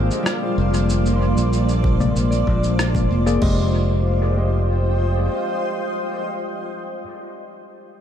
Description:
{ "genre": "ambient dub", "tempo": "95 BPM", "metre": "4/4", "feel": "straight", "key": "F dorian", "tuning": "A4 = 441 Hz", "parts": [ { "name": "granular cloud pad", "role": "sustained chords", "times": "0.0-6.7 s", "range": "Bb3 to G5", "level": "-24 LUFS", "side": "equal", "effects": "built-in reverb" }, { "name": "concert harp", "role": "arpeggios", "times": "0.0-7.0 s", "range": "G3 to C6", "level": "-30 LUFS", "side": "left 2 dB", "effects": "dub echo" }, { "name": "fingered electric bass", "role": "bass", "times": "0.0-5.3 s", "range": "F1 to Bb1", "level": "-19 LUFS", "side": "equal", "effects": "none" }, { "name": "drifting glass-harmonics texture", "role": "texture", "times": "0.0-3.4 s", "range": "D3 to D6", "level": "-36 LUFS", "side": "right 4 dB", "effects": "none" }, { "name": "electronic shaker, rim click and congas", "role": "drums", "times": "0.1-3.4 s", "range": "none", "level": "-28 LUFS", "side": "left 1 dB", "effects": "dub echo" }, { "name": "deep house drum kit", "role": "drums", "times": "1.8-3.6 s", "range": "crash cymbal, kick drum", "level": "-23 LUFS", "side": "equal", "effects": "none" }, { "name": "tine electric piano", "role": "stabs", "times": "2.0-7.0 s", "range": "Ab3 to Eb5", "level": "-28 LUFS", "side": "left 4 dB", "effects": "dub echo" } ], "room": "light reverb, digital ambience", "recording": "echo-heavy mix", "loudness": "-17 LUFS", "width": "side -9 dB against mid", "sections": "0.0-3.4 A section; 3.4-6.0 B section", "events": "none", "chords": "0.0 Bb7; 3.4 Fm9", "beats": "0.27 | 0.90 1.53 2.16 2.79 | 3.42 4.05 4.69 5.32" }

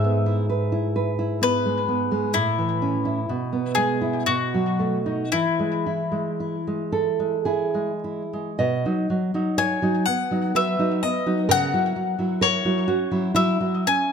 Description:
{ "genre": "romantic duo for mandolin and classical guitar", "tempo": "49-65 BPM", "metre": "3/4", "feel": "rubato", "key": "E major, B major from 8.6 s", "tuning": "A4 = 442 Hz", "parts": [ { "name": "bowl-back mandolin", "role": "melody", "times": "0.0-14.1 s", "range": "E4 to G#5", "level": "-24 LUFS", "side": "left 6 dB", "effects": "tape echo" }, { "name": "nylon-string guitar", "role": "accompaniment", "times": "0.0-14.1 s", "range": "G#2 to D#5", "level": "-22 LUFS", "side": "right 2 dB", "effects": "none" } ], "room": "moderate recital hall reverb, RT60 1.4 s", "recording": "close, detailed microphones", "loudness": "-21 LUFS", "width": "side -6 dB against mid", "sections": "0.0-8.6 A section; 8.6-14.1 B section", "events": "none", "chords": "0.0 E/G#; 2.3 A; 3.3 E/B; 4.3 B7; 5.3 E; 8.6 B; 11.5 F#7/C#", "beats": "0.49 1.42 | 2.35 3.28 4.26 | 5.32 6.39 7.45 | 8.59 9.58 10.55 | 11.49 12.42 13.36" }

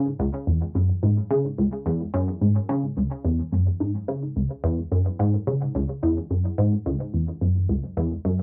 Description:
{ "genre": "ambient", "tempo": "108 BPM", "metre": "4/4", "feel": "straight", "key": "unclear", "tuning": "A4 = 442 Hz", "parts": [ { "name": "tight sequenced synth", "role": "solo", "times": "0.0-8.4 s", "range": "C#2 to C#3", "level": "-24 LUFS", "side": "equal", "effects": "chorus, cassette tape, delay" } ], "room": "wet booth ambience, RT60 0.3 s", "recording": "home recording on cassette, nothing above 7.8 kHz", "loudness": "-24 LUFS", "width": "mono", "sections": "0.0-8.4 A section", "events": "none", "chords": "none", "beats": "0.47 | 1.03 1.58 2.14 2.69 | 3.25 3.81 4.36 4.92 | 5.47 6.03 6.58 7.14 | 7.69 8.25" }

